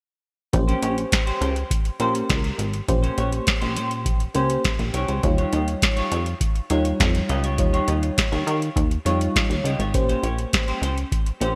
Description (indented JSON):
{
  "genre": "early-eighties boogie funk",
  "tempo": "102 BPM",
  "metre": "4/4",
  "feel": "straight",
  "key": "Bb dorian",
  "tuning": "A4 = 436 Hz",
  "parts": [
    { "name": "FM electric piano with soft pad layer", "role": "accompaniment", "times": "0.5-11.6 s", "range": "G3 to Db5", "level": "-29 LUFS", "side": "equal", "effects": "chorus" },
    { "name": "semi-hollow electric guitar", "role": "riff", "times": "0.5-11.6 s", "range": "Db4 to Eb5", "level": "-32 LUFS", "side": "equal", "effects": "lush chorus" },
    { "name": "plucky analog bass", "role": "bass", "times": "0.5-11.6 s", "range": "Ab1 to Eb3", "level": "-26 LUFS", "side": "equal", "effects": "none" },
    { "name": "booming analog drum machine", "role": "drums", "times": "0.5-11.6 s", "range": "hi-hat, kick drum, snare drum", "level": "-25 LUFS", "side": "equal", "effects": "gated reverb" }
  ],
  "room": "moderate lush hall reverb, RT60 2.2 s",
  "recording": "bright 1980s-style digital production",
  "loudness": "-22 LUFS",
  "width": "mono",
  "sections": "0.5-11.6 A section",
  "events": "none",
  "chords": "0.5 Bbm69; 5.2 Eb9; 9.9 Bbm69"
}